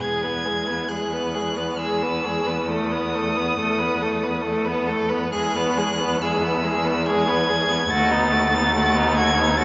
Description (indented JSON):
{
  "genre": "classical, slow romantic movement for string quartet",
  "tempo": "68 BPM",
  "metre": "3/4",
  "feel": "uneven beats, rubato",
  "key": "E major",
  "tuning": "A4 = 440 Hz",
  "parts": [
    { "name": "rich violin", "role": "melody", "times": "0.0-9.6 s", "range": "D#6 to A6", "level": "-28 LUFS", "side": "equal", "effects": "none" },
    { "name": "rich violin", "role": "second line", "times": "0.0-9.6 s", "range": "D#4 to B4", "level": "-27 LUFS", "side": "equal", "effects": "none" },
    { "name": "warm viola", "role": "accompaniment", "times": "0.0-9.6 s", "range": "G#3 to B3", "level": "-29 LUFS", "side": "equal", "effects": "none" },
    { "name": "rich cello", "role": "bass", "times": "0.0-9.6 s", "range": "D#2 to E2", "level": "-28 LUFS", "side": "equal", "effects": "none" }
  ],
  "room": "wet recital hall reverb, RT60 1.6 s",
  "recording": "recorded in a church or concert hall, nothing above 7.6 kHz",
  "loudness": "-22 LUFS",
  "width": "mono",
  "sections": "0.0-9.6 A section",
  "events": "none",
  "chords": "0.0 E; 2.7 B7/E; 5.3 E; 7.9 B7/D#",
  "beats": "| 0.02 0.91 1.80 | 2.70 3.58 4.45 | 5.33 6.21 7.06 | 7.91 8.75 9.60"
}